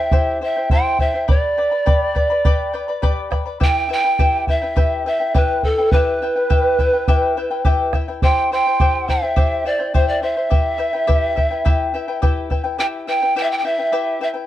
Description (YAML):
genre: andean folk, Andean ensemble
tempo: 104 BPM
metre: 4/4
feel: straight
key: E minor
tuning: A4 = 440 Hz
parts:
  - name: breathy mellow pan flute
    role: melody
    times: 0.0-14.3 s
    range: A4 to G5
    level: -19 LUFS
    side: right 1 dB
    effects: plate reverb
  - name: mellow large quena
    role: second line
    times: 0.0-14.3 s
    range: A4 to C6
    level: -27 LUFS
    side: right 1 dB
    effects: none
  - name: charango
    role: accompaniment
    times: 0.0-14.5 s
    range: E4 to B5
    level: -23 LUFS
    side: left 5 dB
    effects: none
  - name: bombo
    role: percussion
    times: 0.1-12.6 s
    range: none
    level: -18 LUFS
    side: equal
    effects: none
room: wet small room ambience, RT60 0.5 s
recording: dark, warm production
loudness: -16 LUFS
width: side -13 dB against mid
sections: 0.0-12.8 A section; 12.8-14.5 A section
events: speeding up 0.0-14.5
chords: 0.0 C; 1.3 G; 3.6 Em; 8.2 C; 10.5 Em